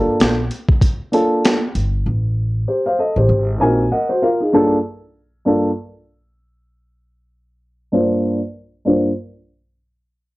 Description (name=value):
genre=hip hop, jazz-hop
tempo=97 BPM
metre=4/4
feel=swing 57% on 16ths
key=unclear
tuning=A4 = 440 Hz
part: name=dark upright piano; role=accompaniment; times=0.0-9.1 s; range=G2 to Ab5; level=-15 LUFS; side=equal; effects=low-pass filter
part: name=upright bass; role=bass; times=0.0-3.9 s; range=G1 to Bb1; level=-18 LUFS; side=equal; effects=none
part: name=boom bap sampler-style drum kit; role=drums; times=0.2-1.9 s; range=hi-hat, kick drum, snare drum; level=-16 LUFS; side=equal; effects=none
room=light reverb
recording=worn, warbling old tape, cassette tape, warbly pitch drift, faint mains hum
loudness=-15 LUFS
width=side -20 dB against mid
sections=0.0-9.5 A section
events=filter sweep on upright piano 0.0-9.5; upright piano fill 3.3-4.5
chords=0.0 Gm9; 2.1 Am7b5; 3.3 Ab9; 4.5 Gm9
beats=0.20 0.82 1.44 | 2.05 2.67 3.29 3.91 | 4.53 5.15 5.76 6.38 | 7.00 7.62 8.24 8.86